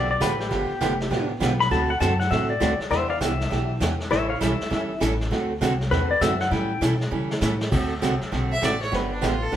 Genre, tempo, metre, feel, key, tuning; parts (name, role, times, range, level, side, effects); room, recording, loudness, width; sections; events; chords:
country, western swing; 200 BPM; 4/4; swing 63% on 8ths; D mixolydian; A4 = 440 Hz
pedal steel guitar; second line; 0.0-6.8 s; G4 to B5; -25 LUFS; left 4 dB
picked steel-string acoustic guitar; accompaniment; 0.0-9.6 s; D3 to A4; -26 LUFS; right 3 dB
upright bass; bass; 0.0-9.6 s; F1 to C#3; -27 LUFS; left 1 dB
vintage brush drum kit; drums; 0.2-9.6 s; brushed snare drum, crash cymbal, hi-hat, kick drum, snare drum; -29 LUFS; equal
clear fiddle; second line; 8.5-9.6 s; D4 to E5; -26 LUFS; right 1 dB
wet stone room reverb, RT60 1.2 s; band playing live in one room; -21 LUFS; side -10 dB against mid
0.0-7.7 A section; 7.7-9.6 A section
pedal steel guitar solo 0.0-7.7; drum fill 7.1-7.7; fiddle solo 7.7-9.6
0.0 G9; 1.7 D7; 2.9 Em7; 4.1 A9; 5.3 D9; 6.5 A9; 7.7 D7; 8.9 G9